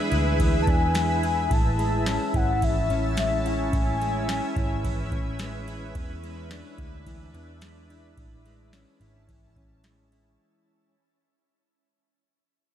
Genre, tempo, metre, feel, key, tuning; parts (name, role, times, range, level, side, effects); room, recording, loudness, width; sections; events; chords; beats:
dream pop; 108 BPM; 4/4; straight; A major; A4 = 439 Hz
shimmering ambient pad; sustained chords; 0.0-10.4 s; C#4 to A5; -31 LUFS; right 2 dB; chorus, built-in reverb, shimmer reverb
mellow electric guitar; arpeggios; 0.0-11.0 s; E2 to E4; -31 LUFS; left 2 dB; wide subtle chorus, tape echo, shimmer reverb
vintage muted picked electric bass; bass; 0.1-10.4 s; G#1 to E2; -29 LUFS; equal
booming analog drum machine; drums; 0.1-10.2 s; kick drum, ride cymbal, snare drum, tambourine; -28 LUFS; equal
warm velvety synth lead; melody; 0.6-5.7 s; E5 to A5; -29 LUFS; left 4 dB; chorus, tape echo, shimmer reverb
light reverb; dark, warm production; -22 LUFS; side -10 dB against mid
0.0-10.4 A section
fade-out 0.0-10.4
0.0 E7; 1.5 Amaj7; 6.0 E7; 8.2 Amaj7
0.40 0.95 | 1.51 2.07 2.62 3.18 | 3.73 4.29 4.84 5.40 | 5.96 6.51 7.07 7.62 | 8.18 8.73 9.29 9.84